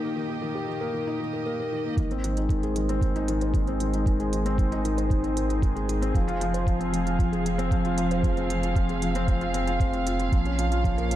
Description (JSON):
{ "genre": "piano and strings electronica", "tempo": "115 BPM", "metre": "4/4", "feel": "straight", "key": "unclear", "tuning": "A4 = 440 Hz", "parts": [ { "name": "dark chamber string section", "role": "sustained chords", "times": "0.0-11.2 s", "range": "Bb2 to F5", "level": "-32 LUFS", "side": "right 1 dB", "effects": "sidechain pumping, low-pass filter" }, { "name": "felt-muted upright piano", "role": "riff", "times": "0.0-11.2 s", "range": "Eb3 to C5", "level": "-27 LUFS", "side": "left 1 dB", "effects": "tape echo" }, { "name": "warm sub bass", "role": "bass", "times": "2.0-11.2 s", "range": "F1 to Bb1", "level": "-29 LUFS", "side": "right 1 dB", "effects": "sidechain pumping" }, { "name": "electronic hi-hat", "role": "drums", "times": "2.0-11.2 s", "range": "none", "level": "-40 LUFS", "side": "right 4 dB", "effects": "high-pass filter on hats" }, { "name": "electronic kick drum", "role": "drums", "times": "2.0-10.9 s", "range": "none", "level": "-24 LUFS", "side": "equal", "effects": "none" } ], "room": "light reverb, studio reverb", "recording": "dark, warm production", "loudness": "-23 LUFS", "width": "side -13 dB against mid", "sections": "0.0-2.0 A section; 2.0-11.2 B section", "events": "build-up 2.0-11.2; filter sweep on string section 2.0-11.2", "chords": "0.0 Eb/Bb; 2.0 Ab; 6.2 Fm; 10.3 Bbm", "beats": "0.41 0.93 1.46 | 1.98 2.50 3.02 3.54 | 4.06 4.59 5.11 5.63 | 6.15 6.67 7.19 7.72 | 8.24 8.76 9.28 9.80 | 10.32 10.85" }